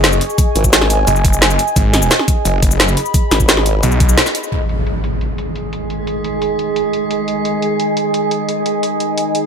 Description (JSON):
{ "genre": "dark technical drum and bass", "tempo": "174 BPM", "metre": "4/4", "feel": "straight", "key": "G# minor", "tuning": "A4 = 440 Hz", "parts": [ { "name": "snarling distorted saw bass", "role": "bass", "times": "0.0-4.2 s", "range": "F#1 to B1", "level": "-15 LUFS", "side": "equal", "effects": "distortion, overdrive" }, { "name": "drum and bass drum kit", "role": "drums", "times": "0.0-9.4 s", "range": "cabasa, hi-hat, snare drum", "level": "-15 LUFS", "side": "equal", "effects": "overdrive, low-pass filter on hats, small room ambience, low-pass filter on perc, low-pass filter on snare" }, { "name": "warbly tape-like pad", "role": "texture", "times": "0.0-9.5 s", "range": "G#4 to B5", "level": "-20 LUFS", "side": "right 1 dB", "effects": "chorus, built-in reverb, phaser, sidechain pumping" }, { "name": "electronic kick drum", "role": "drums", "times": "0.4-4.1 s", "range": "none", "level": "-14 LUFS", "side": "equal", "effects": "overdrive, small room ambience" }, { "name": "formant-sweep wobble bass", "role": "bass", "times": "0.6-1.1, 3.3-3.8 s", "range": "G#1", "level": "-16 LUFS", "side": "equal", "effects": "chorus" }, { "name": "metallic inharmonic drone", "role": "sustained chords", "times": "5.2-9.5 s", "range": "D#3 to G#4", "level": "-19 LUFS", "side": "right 1 dB", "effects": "chorus, built-in reverb, sidechain pumping" }, { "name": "impact", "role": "sound effects", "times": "4.5-5.9 s", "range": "none", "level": "-22 LUFS", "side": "equal", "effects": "none" } ], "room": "light reverb, digital ambience", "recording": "none", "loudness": "-13 LUFS", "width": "side -6 dB against mid", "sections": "0.0-4.5 A section; 4.5-9.5 B section", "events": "drop 0.0-4.5; break 4.2-4.5; band accent 4.2; impact 4.5-5.9; filter sweep on drum 4.5-9.5", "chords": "0.0 G#5" }